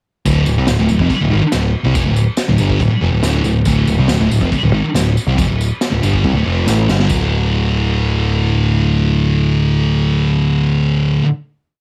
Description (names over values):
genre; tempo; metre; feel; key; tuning
garage rock duo or trio; 140 BPM; 4/4; straight; unclear; A4 = 437 Hz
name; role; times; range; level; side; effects
thick fuzz guitar; riff; 0.3-11.3 s; D2 to A3; -17 LUFS; equal; distortion, cassette tape
growling picked electric bass; bass; 0.3-11.2 s; D1 to C2; -19 LUFS; equal; overdrive
vintage drum kit; drums; 0.3-7.2 s; crash cymbal, kick drum, snare drum; -23 LUFS; equal; cassette tape
tambourine; percussion; 0.3-7.3 s; none; -32 LUFS; equal; none
room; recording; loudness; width
little or no reverb; home recording on cassette; -15 LUFS; mono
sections
0.3-7.1 riff; 7.1-10.5 final chord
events
drum fill 6.7-7.1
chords
0.3 D5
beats
| 0.25 0.68 1.10 1.53 | 1.96 2.38 2.81 3.24 | 3.67 4.09 4.52 4.95 | 5.38 5.81 6.24 6.67 | 7.10 7.53 7.96 8.38 | 8.81 9.24 9.66 10.09